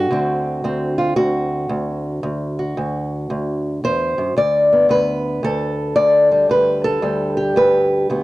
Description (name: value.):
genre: acoustic country blues, solo or duo.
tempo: 113 BPM.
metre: 4/4.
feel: swing 64% on 8ths.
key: D mixolydian.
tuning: A4 = 440 Hz.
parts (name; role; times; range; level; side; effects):
fingerpicked old ladder-braced acoustic guitar; solo; 0.0-8.2 s; D2 to D5; -16 LUFS; equal; none.
room: light reverb.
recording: dry, gritty hardware recording, cassette tape.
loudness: -16 LUFS.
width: side -17 dB against mid.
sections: 0.0-8.2 A section.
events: none.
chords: 0.1 D7; 4.4 G.